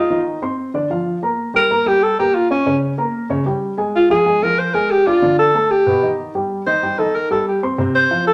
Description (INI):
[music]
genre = jazz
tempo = 187 BPM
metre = 4/4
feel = straight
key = unclear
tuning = A4 = 440 Hz
[part]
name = breathy alto saxophone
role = melody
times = 0.0-8.3 s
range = Db4 to C5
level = -17 LUFS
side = equal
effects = none
[part]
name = dark baby grand piano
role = accompaniment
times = 0.0-8.3 s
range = B2 to D6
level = -22 LUFS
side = equal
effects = none
[sound]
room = wet large studio reverb, RT60 0.8 s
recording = none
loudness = -17 LUFS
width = mono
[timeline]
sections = 0.0-8.3 A section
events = none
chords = 0.1 Cmadd11/Eb; 0.7 Bb; 1.4 Gdim; 3.9 Fm6; 5.2 D5; 5.9 Gaug; 6.5 Cm; 7.8 F5